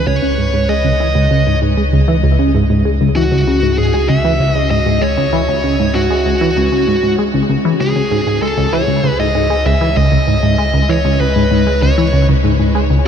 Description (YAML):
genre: ambient, sequencer-driven space music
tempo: 97 BPM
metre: 4/4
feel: straight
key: C# minor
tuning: A4 = 440 Hz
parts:
  - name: bluesy overdriven lead guitar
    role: melody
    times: 0.0-12.3 s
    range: F#4 to E5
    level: -17 LUFS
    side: equal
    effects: distortion, shimmer reverb, ping-pong delay
  - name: warm sub bass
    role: bass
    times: 0.0-13.1 s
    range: C#2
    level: -18 LUFS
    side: equal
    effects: none
  - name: tight sequenced synth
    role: riff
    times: 0.1-13.0 s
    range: C#2 to G#3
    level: -14 LUFS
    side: equal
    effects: chorus, phaser, ping-pong delay
room: wet huge ambient reverb, RT60 8.2 s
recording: none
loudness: -11 LUFS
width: side -8 dB against mid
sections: 0.0-13.1 A section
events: none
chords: 0.0 C#m